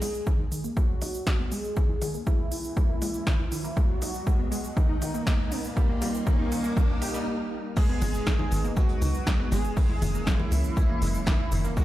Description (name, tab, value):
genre	melodic techno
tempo	120 BPM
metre	4/4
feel	straight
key	G# minor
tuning	A4 = 441 Hz
part	fat analog lead	melody	0.0-11.8 s	A#3 to G#4	-34 LUFS	equal	lush chorus, sidechain pumping, tape echo
part	dark analog pad	sustained chords	0.0-11.8 s	F#3 to F#5	-39 LUFS	equal	wide subtle chorus, sidechain pumping
part	wide unison pluck	arpeggios	0.0-11.8 s	D#3 to G4	-34 LUFS	equal	sidechain pumping, tape echo
part	techno drum kit	drums	0.0-11.8 s	congas, crash cymbal, hi-hat, shaker, snare drum	-34 LUFS	equal	high-pass filter on snare, sidechain pumping on perc, high-pass filter on perc, sidechain pumping on hats, high-pass filter on hats, sidechain pumping on cymbals, high-pass filter on cymbals
part	riser	sound effects	0.0-7.3 s	none	-41 LUFS	right 1 dB	none
part	electronic kick drum	drums	0.3-11.8 s	none	-24 LUFS	equal	none
part	airy dreamy lead	second line	7.8-11.8 s	E3 to G#3	-38 LUFS	right 1 dB	chorus, sidechain pumping, tape echo
part	unplugged drum kit	drums	7.8-11.8 s	hi-hat, shaker, snare drum	-45 LUFS	equal	sidechain pumping on hats, high-pass filter on hats, high-pass filter on snare, sidechain pumping on perc, high-pass filter on perc, high-pass filter on room
part	tight sequencer bass	bass	8.0-11.7 s	F#1 to C#2	-26 LUFS	equal	sidechain pumping
room	light reverb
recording	played on a big sound system in a bare room, large studio reverb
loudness	-24 LUFS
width	side -15 dB against mid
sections	0.0-7.8 A section; 7.8-11.8 B section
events	build-up 0.0-7.8; riser 0.0-7.3; filter sweep on synth pluck 0.0-7.8; filter sweep on analog synth lead 0.0-7.8; filter sweep on analog synth pad 0.0-7.8; break 7.3-7.8; drop 7.8-11.8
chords	0.0 G#m; 1.8 F#; 3.8 G#m; 5.8 D#; 7.8 G#m; 9.8 F#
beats	0.27 0.77 1.27 | 1.77 2.27 2.77 3.27 | 3.77 4.27 4.77 5.27 | 5.77 6.27 6.77 7.27 | 7.77 8.27 8.77 9.27 | 9.77 10.27 10.77 11.27 | 11.77